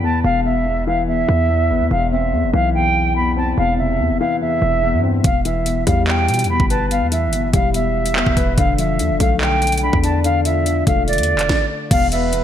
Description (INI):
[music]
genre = hip hop, drill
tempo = 144 BPM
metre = 4/4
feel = half-time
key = E phrygian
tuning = A4 = 440 Hz
[part]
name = silver concert flute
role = melody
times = 0.0-12.4 s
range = D5 to B5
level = -20 LUFS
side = right 2 dB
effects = low-pass filter, ping-pong delay
[part]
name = dark concert grand piano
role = accompaniment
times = 0.0-12.4 s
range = E2 to B4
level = -21 LUFS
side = left 6 dB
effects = low-pass filter
[part]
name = hard-hitting 808-style bass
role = bass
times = 0.0-12.4 s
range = E1 to B2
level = -20 LUFS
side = right 1 dB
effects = none
[part]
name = drill drum kit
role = drums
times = 5.2-12.4 s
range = crash cymbal, handclaps, hi-hat, kick drum, snare drum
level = -20 LUFS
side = equal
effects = gated reverb
[part]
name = breathy flute-like synth lead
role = second line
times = 12.1-12.4 s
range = B4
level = -23 LUFS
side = right 10 dB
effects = chorus
[sound]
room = light reverb, digital ambience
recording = bright 1980s-style digital production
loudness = -15 LUFS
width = side -10 dB against mid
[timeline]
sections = 0.0-11.9 A section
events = stop 11.5-11.9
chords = 0.0 E5; 1.9 Fmaj7(no3)/E (rootless); 5.2 Em; 8.6 Dm/E; 11.9 E5